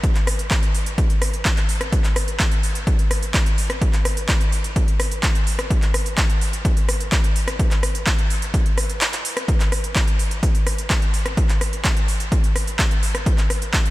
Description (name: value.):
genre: EDM.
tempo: 127 BPM.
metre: 4/4.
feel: straight.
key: none.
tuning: none.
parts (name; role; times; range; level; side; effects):
big-room dance drum kit; drums; 0.0-13.9 s; handclaps, hi-hat, rim click; -23 LUFS; equal; overdrive.
electronic kick drum; drums; 0.0-13.8 s; none; -19 LUFS; equal; overdrive.
room: light reverb.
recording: none.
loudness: -18 LUFS.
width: side -18 dB against mid.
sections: 0.0-13.9 A section.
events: kick drops out 9.0-9.5.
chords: none.